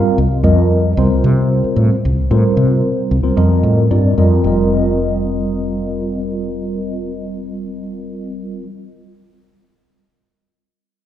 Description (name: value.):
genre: electric jazz fusion.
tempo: 112 BPM.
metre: 4/4.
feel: straight.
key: unclear.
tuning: A4 = 440 Hz.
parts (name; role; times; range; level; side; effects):
mellow tine electric piano; accompaniment; 0.0-8.7 s; G3 to F5; -17 LUFS; equal; medium stereo tremolo, phaser, slapback echo.
woody fretless electric bass; bass; 0.2-8.6 s; F1 to C3; -15 LUFS; equal; none.
room: moderate lush hall reverb, RT60 2.4 s.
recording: live gig heard through the venue's PA, recital hall reverb.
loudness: -13 LUFS.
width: side -11 dB against mid.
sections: 0.0-4.4 A section; 4.4-8.7 B section.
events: none.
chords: 0.2 Cm7; 4.4 Fsus2.